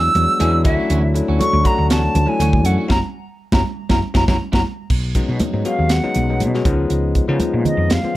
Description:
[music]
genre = electric jazz fusion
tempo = 120 BPM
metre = 4/4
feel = straight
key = unclear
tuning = A4 = 440 Hz
[part]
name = silver concert flute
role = melody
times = 0.0-8.2 s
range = Eb5 to E6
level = -20 LUFS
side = right 1 dB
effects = slapback echo, plate reverb
[part]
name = bell-like tine electric piano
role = accompaniment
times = 0.0-8.2 s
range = F3 to F#4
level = -21 LUFS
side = left 3 dB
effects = none
[part]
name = clean electric guitar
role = stabs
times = 0.0-4.6 s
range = E3 to G#4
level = -28 LUFS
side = right 3 dB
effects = analog chorus
[part]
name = woody fretless electric bass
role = bass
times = 0.0-8.2 s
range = F#1 to Db3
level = -19 LUFS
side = equal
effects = none
[part]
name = tight funk drum kit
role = drums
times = 0.2-8.0 s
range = crash cymbal, hi-hat, kick drum, snare drum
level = -20 LUFS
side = equal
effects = none
[part]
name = congas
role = percussion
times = 0.2-8.0 s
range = none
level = -25 LUFS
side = right 2 dB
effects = none
[sound]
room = moderate club reverb, RT60 0.5 s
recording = none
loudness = -15 LUFS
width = side -16 dB against mid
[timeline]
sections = 0.0-4.9 A section; 4.9-8.2 B section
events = band accent 2.9-4.9; tine electric piano fill 3.4-4.9; drum fill 4.4-4.9; flute solo 4.9-8.2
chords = 0.0 E7; 0.6 Dmaj9; 2.9 F#7; 4.9 Cb6; 6.7 Db9

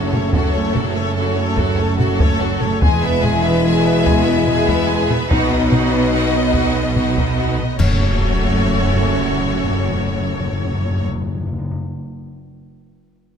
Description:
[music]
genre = cinematic, epic orchestral film score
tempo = 96 BPM (dotted quarters)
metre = 12/8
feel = straight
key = F# dorian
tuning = A4 = 445 Hz
[part]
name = rich symphonic violin section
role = melody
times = 0.0-11.0 s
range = A4 to G#5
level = -25 LUFS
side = left 4 dB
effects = none
[part]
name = clear symphonic violin section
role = second line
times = 0.0-11.1 s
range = D#4 to B4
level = -26 LUFS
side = equal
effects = none
[part]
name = clear symphonic viola section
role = accompaniment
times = 0.0-11.0 s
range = F#3 to D#4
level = -25 LUFS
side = right 1 dB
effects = none
[part]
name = dark French horn section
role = sustained chords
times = 0.0-11.0 s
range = F#3 to E4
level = -23 LUFS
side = left 3 dB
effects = none
[part]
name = warm symphonic string section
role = sustained chords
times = 0.0-11.0 s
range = B3 to E5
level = -26 LUFS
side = left 1 dB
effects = none
[part]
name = clear symphonic double bass section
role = bass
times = 0.0-11.0 s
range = E1 to B1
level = -24 LUFS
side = right 4 dB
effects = none
[part]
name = rich symphonic cello section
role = bass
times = 0.0-11.0 s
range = E2 to B2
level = -23 LUFS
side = right 2 dB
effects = none
[part]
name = taiko ensemble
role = drums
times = 0.1-7.9 s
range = none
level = -20 LUFS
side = equal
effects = none
[part]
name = clash cymbals and concert bass drum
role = percussion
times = 7.8-8.6 s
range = none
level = -28 LUFS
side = equal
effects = none
[part]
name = timpani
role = percussion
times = 7.8-11.8 s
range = F#2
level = -22 LUFS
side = left 2 dB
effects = none
[sound]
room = moderate scoring stage reverb, RT60 1.7 s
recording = close, detailed microphones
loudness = -15 LUFS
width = side -7 dB against mid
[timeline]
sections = 0.0-7.8 A section; 7.8-10.3 B section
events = band accent 7.8-8.2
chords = 0.0 F#m; 2.8 E; 5.3 B; 7.8 F#m

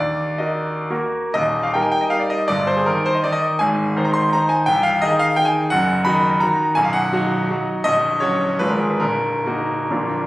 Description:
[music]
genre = classical, romantic triple-time dance for piano with dotted rhythms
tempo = 112-182 BPM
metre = 3/4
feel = rubato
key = Eb major, Eb minor from 5.7 s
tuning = A4 = 441 Hz
[part]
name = bright concert grand piano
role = solo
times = 0.0-10.3 s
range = Bb0 to C6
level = -16 LUFS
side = equal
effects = none
[sound]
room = light reverb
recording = recorded on a phone in the room, studio reverb, compression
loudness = -16 LUFS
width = side -18 dB against mid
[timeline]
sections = 0.0-1.4 A section; 1.4-10.3 B section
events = none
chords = 0.0 Ebm; 1.4 Eb; 2.5 Eb/G; 3.6 Ab; 4.7 Ab/C; 5.7 Ebm/Gb; 6.8 B; 7.9 Gb/Bb; 8.6 Abm69; 9.0 Ebm/Bb

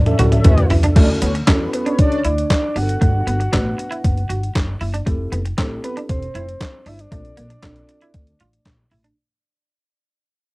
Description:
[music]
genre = early-eighties boogie funk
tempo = 117 BPM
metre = 4/4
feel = straight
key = D major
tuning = A4 = 444 Hz
[part]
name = soft octave-layered synth lead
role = melody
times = 0.0-8.7 s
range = B4 to F#5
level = -26 LUFS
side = right 1 dB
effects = chorus, phaser, cassette tape
[part]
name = upright bass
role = bass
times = 0.0-9.1 s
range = E1 to E2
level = -21 LUFS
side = equal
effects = none
[part]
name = mellow synth brass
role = second line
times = 0.1-2.2 s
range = A3 to E5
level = -24 LUFS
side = equal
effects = chorus, cassette tape, analog delay
[part]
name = crisp 8-bit digital drum machine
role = drums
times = 0.1-9.2 s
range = crash cymbal, handclaps, hi-hat, kick drum, snare drum, toms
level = -15 LUFS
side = equal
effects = overdrive, cassette tape
[part]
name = tine electric piano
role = accompaniment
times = 0.2-8.3 s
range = B3 to B4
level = -26 LUFS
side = left 1 dB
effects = cassette tape
[part]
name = semi-hollow electric guitar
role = riff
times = 0.2-9.2 s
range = A3 to F#4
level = -26 LUFS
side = right 2 dB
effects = lush chorus, cassette tape
[sound]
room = light reverb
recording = home recording on cassette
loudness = -15 LUFS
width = side -23 dB against mid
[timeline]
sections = 1.0-9.2 A section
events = drum fill 0.0-1.0; band accent 0.0-1.0; fade-out 1.0-9.2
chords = 0.0 Dmaj9; 2.8 Gmaj9; 5.1 Fmaj9; 7.1 Bbmaj9

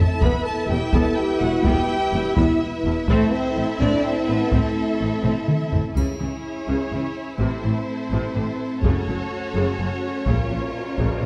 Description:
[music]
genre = cinematic, epic orchestral film score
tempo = 84 BPM (dotted quarters)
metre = 6/8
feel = straight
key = C# harmonic minor from 6.0 s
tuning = A4 = 435 Hz
[part]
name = warm studio violin section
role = melody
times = 0.0-11.3 s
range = C5 to E5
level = -36 LUFS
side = equal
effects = none
[part]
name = rich symphonic violin section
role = second line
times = 0.0-11.3 s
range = E4 to B5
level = -36 LUFS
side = equal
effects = none
[part]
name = warm symphonic viola section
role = accompaniment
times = 0.0-11.3 s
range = C3 to E4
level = -30 LUFS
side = equal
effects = none
[part]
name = mellow French horn section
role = sustained chords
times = 0.0-11.3 s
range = G#3 to B4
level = -29 LUFS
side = equal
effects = none
[part]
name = rich symphonic string section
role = sustained chords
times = 0.0-11.3 s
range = B3 to E5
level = -33 LUFS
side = equal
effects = none
[part]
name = rich chamber cello section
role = bass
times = 0.0-11.3 s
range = E2 to C#3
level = -30 LUFS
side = equal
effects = none
[part]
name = rich symphonic double bass section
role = bass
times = 0.0-11.3 s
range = E1 to C#2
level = -30 LUFS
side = equal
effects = none
[part]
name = taiko ensemble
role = drums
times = 0.2-11.3 s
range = none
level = -26 LUFS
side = equal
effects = none
[part]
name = triangle and cymbal swell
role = percussion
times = 6.0-11.3 s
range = none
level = -40 LUFS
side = equal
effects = none
[sound]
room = wet recital hall reverb, RT60 1.4 s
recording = dark, warm production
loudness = -22 LUFS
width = mono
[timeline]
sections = 0.0-6.0 A section; 6.0-11.3 B section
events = drum fill 0.0, 5.2-6.0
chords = 0.2 Em; 3.1 Am; 6.0 C#m; 7.4 Am; 8.8 F#m; 10.3 A#m

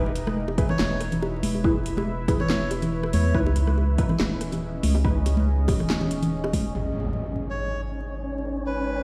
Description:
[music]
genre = deep dubstep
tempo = 141 BPM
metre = 4/4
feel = swing 54% on 16ths, half-time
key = G# minor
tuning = A4 = 440 Hz
[part]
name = deep dark ambient pad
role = sustained chords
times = 0.0-9.0 s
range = G#3 to A#5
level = -35 LUFS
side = equal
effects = chorus, built-in reverb
[part]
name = filtered dub chord stab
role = stabs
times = 0.0-8.6 s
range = B3 to B4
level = -34 LUFS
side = equal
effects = phaser, lush chorus, dub echo
[part]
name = soft dub sub bass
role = bass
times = 0.0-9.0 s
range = D#1 to E2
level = -29 LUFS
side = equal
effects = none
[part]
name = bongos and congas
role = percussion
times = 0.1-6.6 s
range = none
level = -30 LUFS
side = equal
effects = dub echo
[part]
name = deep house drum kit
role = drums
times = 0.2-6.6 s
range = handclaps, hi-hat, rim click, snare drum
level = -33 LUFS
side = equal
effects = overdrive, low-pass filter on hats, low-pass filter on snare
[part]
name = electronic kick drum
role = drums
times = 0.6-6.6 s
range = none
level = -27 LUFS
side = equal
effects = overdrive
[part]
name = melodica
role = melody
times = 0.7-3.4, 7.5-9.0 s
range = B4 to C#5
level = -36 LUFS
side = equal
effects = dub echo
[part]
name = impact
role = sound effects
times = 6.7-8.5 s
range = none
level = -35 LUFS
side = equal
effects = none
[part]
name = wind-like tuned noise texture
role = texture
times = 7.5-9.0 s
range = C#4 to C#5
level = -35 LUFS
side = equal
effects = built-in reverb
[sound]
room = light reverb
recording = played on a big sound system in a bare room, stone room reverb, vinyl crackle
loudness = -25 LUFS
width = mono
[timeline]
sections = 0.0-6.8 A section; 6.8-9.0 B section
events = drop 0.0-6.8; impact 6.8-8.5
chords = 0.0 E5; 3.3 C#5; 6.8 G#madd9

